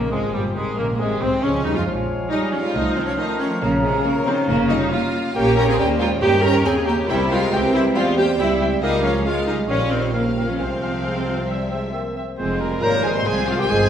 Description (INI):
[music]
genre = quick classical-period movement for symphony orchestra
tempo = 137 BPM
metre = 4/4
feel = straight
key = F minor from 5.4 s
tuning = A4 = 442 Hz
[part]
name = mellow large flute ensemble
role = second line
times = 0.0-13.9 s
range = C4 to Bb5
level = -31 LUFS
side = equal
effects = none
[part]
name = rich chamber violin section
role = second line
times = 0.0-13.9 s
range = F4 to Bb5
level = -30 LUFS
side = left 3 dB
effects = none
[part]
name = warm clarinet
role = second line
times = 0.0-13.9 s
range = G3 to Db5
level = -32 LUFS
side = equal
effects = none
[part]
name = warm cor anglais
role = second line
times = 0.0-13.9 s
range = G3 to G5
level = -31 LUFS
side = equal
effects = none
[part]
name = mellow bassoon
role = accompaniment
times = 0.0-13.9 s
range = C3 to Bb3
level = -27 LUFS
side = equal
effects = none
[part]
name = rich chamber viola section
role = accompaniment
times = 0.0-13.9 s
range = Eb3 to Bb4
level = -23 LUFS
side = right 1 dB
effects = none
[part]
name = mellow French horn section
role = sustained chords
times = 0.0-13.9 s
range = F3 to G4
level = -27 LUFS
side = left 2 dB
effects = none
[part]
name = clear chamber cello section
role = bass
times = 0.0-13.9 s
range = F2 to Db4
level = -26 LUFS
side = right 1 dB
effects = none
[part]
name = rich chamber double bass section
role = bass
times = 0.0-13.9 s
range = F1 to G2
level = -26 LUFS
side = right 1 dB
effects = none
[part]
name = rich chamber violin section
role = melody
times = 0.1-13.9 s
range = G3 to C6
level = -30 LUFS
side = left 2 dB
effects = none
[part]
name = mellow trumpet section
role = stabs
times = 12.8-13.9 s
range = F4 to C5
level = -25 LUFS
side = right 1 dB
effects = none
[sound]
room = wet recital hall reverb, RT60 1.5 s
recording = heard from further back in the room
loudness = -18 LUFS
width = side -9 dB against mid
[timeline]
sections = 0.0-12.4 A section; 12.4-13.9 B section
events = none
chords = 0.1 Ab; 1.9 Bbm7; 2.7 F7/C; 3.6 Bbm; 5.4 Gdim/Bb; 7.1 C; 8.8 Db; 9.7 Gm7b5/Bb; 10.6 Fm/C; 11.5 C; 12.4 Fm